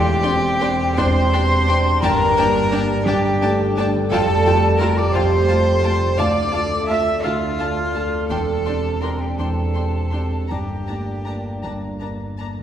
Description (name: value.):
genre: cinematic, emotional film score for orchestra.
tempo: 52-59 BPM (dotted quarters).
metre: 6/8.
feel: rubato.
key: unclear.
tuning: A4 = 441 Hz.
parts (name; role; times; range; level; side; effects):
hollow concert flute; second line; 0.0-11.6 s; G5 to F6; -25 LUFS; left 2 dB; none.
dark concert grand piano; accompaniment; 0.0-12.6 s; E1 to Bb4; -24 LUFS; equal; none.
mellow French horn section; sustained chords; 0.0-12.4 s; Bb2 to A4; -27 LUFS; right 1 dB; none.
concert harp; arpeggios; 0.0-12.6 s; F2 to D6; -29 LUFS; left 4 dB; none.
dark studio double bass section; bass; 0.0-12.6 s; D2 to G2; -24 LUFS; right 1 dB; none.
rich studio cello section; bass; 0.0-11.6 s; F4 to E5; -23 LUFS; right 3 dB; none.
warm studio violin section; melody; 0.2-12.5 s; A5 to C6; -33 LUFS; left 3 dB; none.
warm studio violin section; second line; 0.2-12.5 s; F5 to A5; -31 LUFS; equal; none.
warm studio viola section; accompaniment; 0.2-12.5 s; D4 to F4; -30 LUFS; equal; none.
room: wet scoring stage reverb, RT60 1.9 s.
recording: heard from further back in the room.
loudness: -16 LUFS.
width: side -9 dB against mid.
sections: 0.0-12.6 A section.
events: none.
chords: 0.0 Cadd9/E; 2.0 Gmadd9; 4.1 Fadd9; 6.2 Dm; 8.3 Cadd9/E; 10.5 Gmadd9.